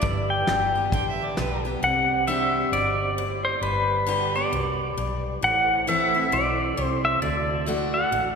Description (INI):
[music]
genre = honky-tonk and classic country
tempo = 133 BPM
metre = 4/4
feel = swing 61% on 8ths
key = G major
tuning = A4 = 442 Hz
[part]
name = pedal steel guitar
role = melody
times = 0.0-8.4 s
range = B4 to G5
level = -23 LUFS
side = left 1 dB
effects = none
[part]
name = mellow tonewheel organ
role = accompaniment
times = 0.0-8.4 s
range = E4 to D5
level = -33 LUFS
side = right 3 dB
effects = slow rotary speaker, chorus vibrato
[part]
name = picked steel-string acoustic guitar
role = accompaniment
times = 0.0-8.4 s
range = F#2 to G4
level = -30 LUFS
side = left 1 dB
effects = none
[part]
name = vintage muted fingered electric bass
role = bass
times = 0.0-8.4 s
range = G1 to D2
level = -31 LUFS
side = right 2 dB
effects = none
[part]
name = soft brush drum kit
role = drums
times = 0.0-1.7 s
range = hi-hat, kick drum, snare drum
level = -30 LUFS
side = equal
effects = none
[part]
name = clear fiddle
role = second line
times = 0.9-1.7 s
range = B4 to G5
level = -34 LUFS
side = right 3 dB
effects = none
[sound]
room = wet church reverb, RT60 2.9 s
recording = recorded in a church or concert hall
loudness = -21 LUFS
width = side -6 dB against mid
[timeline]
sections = 0.0-1.8 A section; 1.8-8.4 B section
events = none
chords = 0.0 G; 1.8 Csus2; 3.6 G; 5.4 Am; 7.2 D